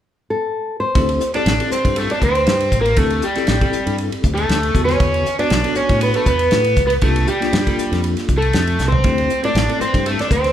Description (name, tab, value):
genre	electric jazz fusion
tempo	119 BPM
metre	4/4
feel	swing 54% on 16ths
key	D minor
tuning	A4 = 441 Hz
part	nylon-string guitar	melody	0.3-10.5 s	G4 to D5	-20 LUFS	right 1 dB	none
part	bell-like tine electric piano	accompaniment	1.0-10.4 s	D3 to B4	-24 LUFS	left 2 dB	fast stereo tremolo
part	modern bright fingered electric bass	bass	1.0-10.5 s	A1 to A2	-21 LUFS	equal	none
part	damped 70s drum kit	drums	1.0-10.5 s	hi-hat, kick drum, ride cymbal, snare drum, toms	-20 LUFS	equal	none
part	raw garage guitar	second line	1.4-10.5 s	G3 to D4	-22 LUFS	left 1 dB	overdrive
room	light reverb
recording	band playing live in one room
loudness	-15 LUFS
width	side -10 dB against mid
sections	0.9-10.5 A section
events	drum fill 8.8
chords	0.0 N.C.; 0.9 D9sus4; 4.7 E9sus4; 7.0 C9sus4; 9.0 D9sus4